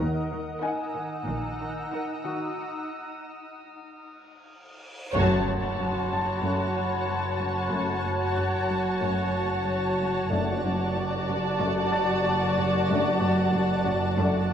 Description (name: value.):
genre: cinematic, suspense film score.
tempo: 93 BPM.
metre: 4/4.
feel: straight.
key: Eb phrygian, F# minor from 5.2 s.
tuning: A4 = 441 Hz.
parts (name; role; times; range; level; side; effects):
shimmering ambient pad; sustained chords; 0.0-14.5 s; Eb4 to Bb5; -33 LUFS; equal; chorus, built-in reverb.
rich studio cello section; riff; 0.0-14.5 s; F#2 to Eb4; -33 LUFS; equal; none.
dark studio cello section; bass; 0.0-14.5 s; F#2 to Eb3; -32 LUFS; right 1 dB; none.
warm studio double bass section; bass; 0.0-14.5 s; F#1 to Eb2; -32 LUFS; right 2 dB; none.
bright concert grand piano; texture; 0.0-14.5 s; Gb4 to A6; -36 LUFS; left 1 dB; none.
warm studio violin section; texture; 0.0-10.0 s; A5 to Fb6; -38 LUFS; left 4 dB; none.
dark studio violin section; second line; 0.6-14.5 s; Bb4 to D5; -32 LUFS; left 2 dB; none.
warm studio viola section; accompaniment; 0.6-14.5 s; Eb4 to F#4; -32 LUFS; equal; none.
warm studio violin section; melody; 0.7-14.5 s; Gb5 to A5; -34 LUFS; left 1 dB; none.
reverse cymbal and impact; sound effects; 4.7-7.7 s; none; -39 LUFS; equal; none.
dark French horn section; sustained chords; 5.1-14.4 s; A3 to D4; -34 LUFS; left 3 dB; none.
timpani; percussion; 10.3-11.2 s; F#2; -37 LUFS; equal; none.
room: wet scoring stage reverb, RT60 2.0 s.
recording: worn, warbling old tape, cassette tape, warbly pitch drift.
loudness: -24 LUFS.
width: side -8 dB against mid.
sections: 0.0-5.2 A section; 5.2-14.5 B section.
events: break 2.6-5.2; reverse cymbal 4.7-5.2; band accent 5.2-5.8; impact 5.2-7.7.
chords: 0.0 Ebm; 2.6 N.C.; 5.2 F#m; 10.3 D/F#.